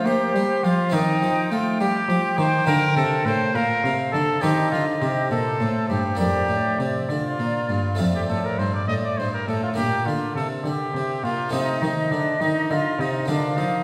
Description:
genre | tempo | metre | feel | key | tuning
classical, baroque-style sonata movement with continuo | 68 BPM (dotted quarters) | 12/8 | straight | Bb major | A4 = 443 Hz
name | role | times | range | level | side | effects
bright trumpet | melody | 0.0-13.8 s | D4 to Eb5 | -27 LUFS | equal | none
concert flute | second line | 0.0-13.8 s | C5 to G5 | -29 LUFS | equal | none
harpsichord | accompaniment | 0.0-13.8 s | F2 to F4 | -29 LUFS | equal | none
rich cello | bass | 0.0-13.8 s | F2 to Bb3 | -28 LUFS | equal | none
room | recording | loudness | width
wet concert hall reverb, RT60 1.8 s | recorded in a church or concert hall | -22 LUFS | mono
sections
0.0-13.8 A section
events
none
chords
0.0 Bb5; 0.9 Cm/Eb; 2.7 Bb; 4.4 Cm; 6.2 Bb/F; 8.0 F; 9.8 Bb; 11.5 Adim/C; 13.3 Bb/D

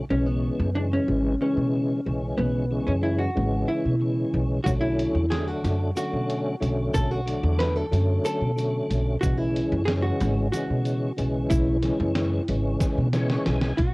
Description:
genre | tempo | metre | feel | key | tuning
progressive instrumental, band music in an uneven meter | 184 BPM (eighths) | 7/8 | straight | unclear | A4 = 440 Hz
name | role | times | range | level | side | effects
tonewheel organ | accompaniment | 0.0-13.8 s | C#3 to G#5 | -28 LUFS | left 1 dB | overdrive, chorus vibrato, slow rotary speaker, cassette tape
upright bass | bass | 0.0-13.9 s | G#1 to B2 | -25 LUFS | equal | tube saturation
vintage hollow-body jazz guitar | melody | 0.1-13.9 s | B3 to B4 | -28 LUFS | equal | cassette tape
dusty soul sampler-style drum kit | drums | 4.7-13.9 s | hi-hat, kick drum, snare drum | -29 LUFS | equal | cassette tape
tube shaker | percussion | 4.7-13.3 s | none | -45 LUFS | right 2 dB | none
room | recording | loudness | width
light reverb | home recording on cassette | -22 LUFS | side -24 dB against mid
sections
0.0-13.8 A section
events
drum fill 12.8-13.8; tonewheel organ fill 12.8-13.8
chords
0.1 C#m; 4.7 Bm7; 9.2 C#m

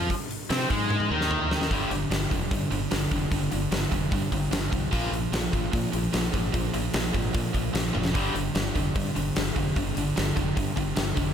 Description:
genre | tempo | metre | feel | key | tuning
hard rock | 149 BPM | 4/4 | straight | G phrygian | A4 = 437 Hz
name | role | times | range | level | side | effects
cranked stack guitar | riff | 0.0-11.3 s | G2 to C4 | -31 LUFS | left 9 dB | overdrive, phaser
heavy high-gain guitar | riff | 0.0-11.3 s | G2 to C4 | -30 LUFS | right 9 dB | distortion
modern bright fingered electric bass | bass | 0.0-11.3 s | F1 to C3 | -31 LUFS | equal | none
huge arena drum kit | drums | 0.1-11.3 s | hi-hat, kick drum, snare drum, toms | -28 LUFS | equal | none
room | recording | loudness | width
light reverb | none | -24 LUFS | side -8 dB against mid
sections
0.0-1.7 A section; 1.7-11.3 B section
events
drum fill 0.9-1.7, 7.9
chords
0.0 Ab6; 1.7 G5; 4.9 Bb5; 8.2 G5

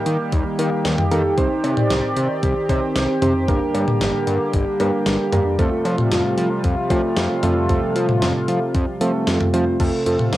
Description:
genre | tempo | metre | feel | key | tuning
synth-pop | 114 BPM | 4/4 | straight | unclear | A4 = 445 Hz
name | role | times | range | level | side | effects
soft electric-piano-like synth keys | accompaniment | 0.0-10.4 s | A3 to C5 | -22 LUFS | right 1 dB | chorus
chorused pulse-width pad | sustained chords | 0.0-10.4 s | C3 to D5 | -22 LUFS | equal | none
fat analog bass | bass | 0.1-10.4 s | G1 to F3 | -23 LUFS | equal | none
clean 12-bit digital drum machine | drums | 0.1-10.4 s | cowbell, crash cymbal, hi-hat, kick drum, snare drum, toms | -22 LUFS | left 1 dB | cassette tape
room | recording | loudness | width
moderate booth ambience, RT60 0.3 s | home recording on cassette | -17 LUFS | side -15 dB against mid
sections
0.0-9.8 A section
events
none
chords
0.0 Eb; 1.4 Cmadd9; 3.5 Gm; 5.6 F

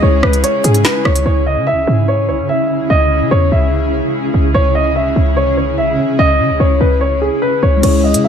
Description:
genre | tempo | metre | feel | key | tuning
hip hop, drill | 146 BPM | 4/4 | half-time | C# minor | A4 = 438 Hz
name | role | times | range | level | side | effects
dark grand piano | melody | 0.0-8.3 s | G#4 to E5 | -16 LUFS | equal | low-pass filter
bell-like tine electric piano | accompaniment | 0.0-1.3, 7.8-8.3 s | G#3 to G#4 | -18 LUFS | left 4 dB | wide subtle chorus, low-pass filter
granular cloud pad | sustained chords | 0.0-7.8 s | C#3 to G#4 | -18 LUFS | equal | built-in reverb
short 808-style bass | bass | 0.0-8.3 s | B1 to E3 | -14 LUFS | equal | none
drill drum kit | drums | 0.2-1.3, 7.8-8.2 s | crash cymbal, finger snaps, hi-hat, rim click, snare drum | -18 LUFS | equal | none
room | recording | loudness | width
light reverb, digital ambience | none | -11 LUFS | side -8 dB against mid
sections
0.0-1.3 A section; 1.3-7.8 B section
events
none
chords
0.0 C#m

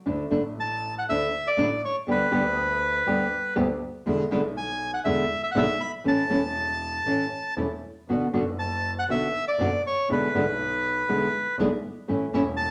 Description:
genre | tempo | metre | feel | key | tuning
tango | 120 BPM | 4/4 | rubato | D major | A4 = 440 Hz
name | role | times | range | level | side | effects
nylon-string guitar | accompaniment | 0.1-12.4 s | B2 to G4 | -28 LUFS | equal | none
clear double bass | bass | 0.1-12.7 s | E1 to E2 | -37 LUFS | equal | none
bandoneon | melody | 0.6-12.7 s | B4 to B5 | -28 LUFS | equal | none
room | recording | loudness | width
wet studio reverb, RT60 1.0 s | none | -26 LUFS | mono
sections
0.1-12.7 A section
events
none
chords
0.1 Dsus2; 2.1 G/D; 4.1 E7; 6.1 A; 8.1 Bm; 10.1 E7/B; 12.1 A

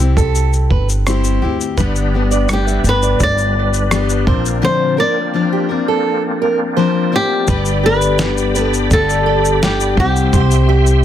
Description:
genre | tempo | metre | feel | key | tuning
acoustic pop | 84 BPM | 4/4 | straight | G major | A4 = 440 Hz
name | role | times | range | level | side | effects
picked steel-string acoustic guitar | accompaniment | 0.0-11.0 s | G2 to Bb4 | -19 LUFS | left 7 dB | none
upright bass | bass | 0.0-11.0 s | G1 to D2 | -16 LUFS | right 1 dB | none
fingerpicked steel-string acoustic guitar | arpeggios | 0.2-11.0 s | G4 to E5 | -22 LUFS | right 8 dB | none
dusty soul sampler-style drum kit | drums | 0.2-11.0 s | kick drum, rim click, shaker, snare drum | -18 LUFS | equal | none
bright tonewheel organ | sustained chords | 1.8-11.0 s | G3 to C6 | -23 LUFS | right 1 dB | chorus vibrato, fast rotary speaker
flamenco guitar | melody | 2.5-11.0 s | G4 to D5 | -18 LUFS | equal | tape echo
bright reed electric piano | accompaniment | 7.5-11.0 s | G3 to C5 | -26 LUFS | left 6 dB | overdrive, medium tremolo
room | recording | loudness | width
light reverb, studio reverb | dense, heavily limited modern master | -12 LUFS | side -11 dB against mid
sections
0.0-7.5 A section; 7.5-11.0 B section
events
none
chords
0.0 C; 1.8 G; 4.3 Bbadd9; 7.5 G; 10.0 C

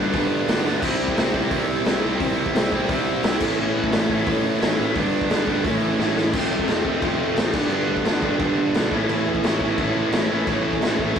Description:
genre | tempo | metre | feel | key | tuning
punk rock | 174 BPM | 4/4 | straight | unclear | A4 = 440 Hz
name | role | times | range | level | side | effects
raw garage guitar | riff | 0.0-11.2 s | F2 to C4 | -26 LUFS | left 3 dB | overdrive
tight distorted guitar | riff | 0.0-11.2 s | F2 to E4 | -24 LUFS | right 4 dB | distortion
tight distorted guitar | riff | 0.0-11.2 s | F2 to E4 | -29 LUFS | left 1 dB | distortion
fuzz picked electric bass | bass | 0.0-11.2 s | F1 to E2 | -32 LUFS | left 1 dB | overdrive
raw garage drum kit | drums | 0.1-11.2 s | crash cymbal, hi-hat, kick drum, snare drum | -24 LUFS | equal | none
room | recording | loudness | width
moderate studio reverb, RT60 0.5 s | rough rehearsal-room recording, tube saturation | -19 LUFS | side -7 dB against mid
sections
0.0-6.3 A section; 6.3-11.2 B section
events
drum fill 0.7, 6.0-6.3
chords
0.0 G; 0.8 C; 3.4 A; 5.0 G; 5.6 A; 6.3 F; 7.5 G; 8.9 A

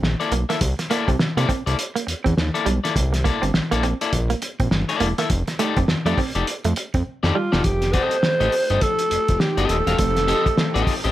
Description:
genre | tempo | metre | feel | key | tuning
funk | 102 BPM | 4/4 | swing 60% on 16ths | unclear | A4 = 440 Hz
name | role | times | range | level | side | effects
semi-hollow electric guitar | riff | 0.0-7.5 s | G3 to C4 | -26 LUFS | right 6 dB | none
fat analog bass | bass | 0.0-11.1 s | Eb1 to C3 | -22 LUFS | equal | none
cloth-damped thuddy drum kit | drums | 0.0-11.1 s | hi-hat, kick drum, snare drum | -23 LUFS | equal | none
electric guitar at the edge of break-up | accompaniment | 0.2-11.1 s | Bb3 to F5 | -24 LUFS | left 5 dB | none
breathy alto saxophone | melody | 7.4-10.8 s | F4 to C5 | -21 LUFS | right 1 dB | none
phased string machine | sustained chords | 7.6-11.1 s | F3 to G4 | -30 LUFS | right 1 dB | ensemble chorus, phaser
room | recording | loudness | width
light reverb | none | -18 LUFS | side -14 dB against mid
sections
0.0-7.6 A section; 7.6-11.1 B section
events
drum fill 7.1-7.6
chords
0.0 C13; 5.3 F13; 7.6 F9

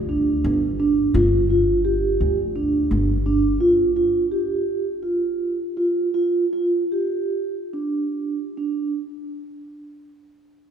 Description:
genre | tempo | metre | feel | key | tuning
contemporary instrumental, chamber music in an uneven meter | 136-171 BPM (eighths) | 7/8 | straight | unclear | A4 = 440 Hz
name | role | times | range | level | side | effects
upright bass | bass | 0.0-3.6 s | G1 to D2 | -23 LUFS | left 1 dB | none
vibraphone with soft mallets | arpeggios | 0.1-8.9 s | D4 to G4 | -20 LUFS | right 2 dB | none
room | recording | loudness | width
wet church reverb, RT60 2.8 s | recorded in a church or concert hall | -19 LUFS | side -8 dB against mid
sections
0.0-9.0 A section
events
slowing down 3.6-9.0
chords
0.0 G5; 3.6 Fsus2; 6.1 G5

